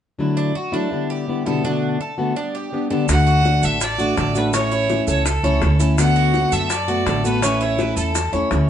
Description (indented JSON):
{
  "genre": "latin, Cuban son and guajira",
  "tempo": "166 BPM",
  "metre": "4/4",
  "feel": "straight",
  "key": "D major",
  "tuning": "A4 = 440 Hz",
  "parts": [
    { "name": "fingerpicked plugged-in steel-string acoustic guitar", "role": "accompaniment", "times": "0.2-8.7 s", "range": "B2 to G4", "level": "-21 LUFS", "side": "left 2 dB", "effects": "none" },
    { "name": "Cuban tres", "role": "arpeggios", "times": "0.4-8.7 s", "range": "C#4 to C#5", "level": "-26 LUFS", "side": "equal", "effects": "none" },
    { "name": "clear violin", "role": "melody", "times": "3.1-8.3 s", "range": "A4 to F#5", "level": "-22 LUFS", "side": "right 1 dB", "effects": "none" },
    { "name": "upright bass", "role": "bass", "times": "3.1-8.7 s", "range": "A1 to F#2", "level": "-20 LUFS", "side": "right 1 dB", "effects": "none" },
    { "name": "bongos", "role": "percussion", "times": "3.1-8.7 s", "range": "none", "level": "-28 LUFS", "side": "left 5 dB", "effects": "none" },
    { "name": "maracas", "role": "percussion", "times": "3.1-8.7 s", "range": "none", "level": "-29 LUFS", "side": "right 6 dB", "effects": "none" }
  ],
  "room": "moderate studio reverb, RT60 0.7 s",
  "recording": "band playing live in one room, nothing above 10.6 kHz",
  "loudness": "-17 LUFS",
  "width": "side -9 dB against mid",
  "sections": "0.2-3.1 A section; 3.1-8.7 B section",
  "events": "none",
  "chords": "0.2 Dadd9; 0.9 Em7; 1.6 Bm7; 2.4 G; 3.1 D; 4.5 A; 6.0 D6; 7.4 A",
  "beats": "| 0.19 0.55 0.91 1.27 | 1.64 2.00 2.36 2.73 | 3.09 3.45 3.81 4.17 | 4.54 4.90 5.26 5.62 | 5.98 6.34 6.71 7.07 | 7.43 7.79 8.15 8.51"
}